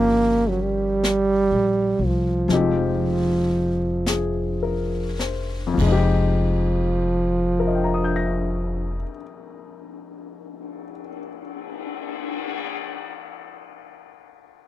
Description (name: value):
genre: jazz ballad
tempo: 33-44 BPM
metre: 4/4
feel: swing 66% on 8ths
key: F minor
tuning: A4 = 440 Hz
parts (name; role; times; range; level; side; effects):
- breathy trombone; melody; 0.0-9.1 s; F3 to Bb3; -22 LUFS; right 2 dB; none
- warm baby grand piano; accompaniment; 0.0-14.7 s; F2 to Bb6; -26 LUFS; left 6 dB; none
- upright bass; bass; 0.0-9.0 s; F1 to C2; -25 LUFS; left 1 dB; none
- jazz brush drum kit; drums; 1.0-12.6 s; brushed snare drum, cymbal swell, hi-hat, kick drum, ride cymbal, snare drum; -32 LUFS; left 4 dB; none
room: light reverb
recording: dry, close 1970s-style studio recording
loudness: -20 LUFS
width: side -14 dB against mid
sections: 0.0-5.8 A section; 5.8-13.0 B section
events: slowing down 0.0-5.8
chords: 0.0 Gm7b5; 2.5 Fm9